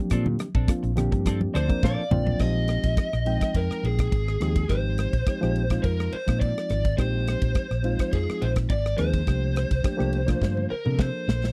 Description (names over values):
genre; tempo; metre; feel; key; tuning
electric jazz fusion; 105 BPM; 4/4; straight; Bb mixolydian; A4 = 440 Hz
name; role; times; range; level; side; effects
reed electric piano; accompaniment; 0.0-11.4 s; F3 to G5; -32 LUFS; equal; none
clean electric guitar; stabs; 0.1-2.3 s; F3 to A4; -34 LUFS; equal; lush chorus
fretless electric bass; bass; 0.1-11.5 s; Ab1 to C3; -28 LUFS; equal; subtle chorus
modern studio drum kit; drums; 0.1-11.5 s; crash cymbal, hi-hat, kick drum, ride cymbal, rim click, snare drum, toms; -28 LUFS; equal; none
congas; percussion; 0.3-2.4 s; none; -33 LUFS; equal; none
lead guitar through a small cranked amp; melody; 1.6-11.5 s; Ab4 to Eb5; -33 LUFS; equal; overdrive, slapback echo
room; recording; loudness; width
little or no reverb; dry, close 1970s-style studio recording; -25 LUFS; mono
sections
0.0-2.4 A section; 2.4-11.5 B section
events
reed electric piano fill 1.3-2.4; drum fill 1.8-2.4, 10.4-11.5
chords
0.0 Bbmaj9; 2.4 Bb13sus4; 9.3 C13sus4